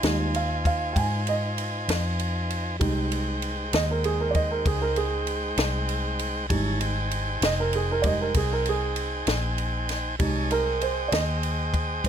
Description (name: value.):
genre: slow blues.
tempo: 65 BPM (dotted quarters).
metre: 12/8.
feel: straight.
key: F minor.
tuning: A4 = 439 Hz.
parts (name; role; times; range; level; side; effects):
warm baby grand piano; accompaniment; 0.0-12.1 s; G3 to Ab5; -28 LUFS; right 5 dB; none.
tonewheel organ; sustained chords; 0.0-12.1 s; E3 to A5; -30 LUFS; equal; stopped rotary speaker.
vintage muted fingered electric bass; bass; 0.0-12.1 s; F1 to Ab2; -28 LUFS; left 1 dB; none.
compact cocktail drum kit; drums; 0.0-12.1 s; kick drum, ride cymbal, snare drum; -29 LUFS; left 1 dB; none.
room: little or no reverb.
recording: none.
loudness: -23 LUFS.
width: side -8 dB against mid.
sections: 0.0-12.1 A section.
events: grand piano solo 0.0-12.1.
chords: 0.0 Fm7.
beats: 0.03 0.96 1.88 | 2.81 3.73 4.66 5.58 | 6.50 7.43 8.35 9.27 | 10.20 11.12 12.04.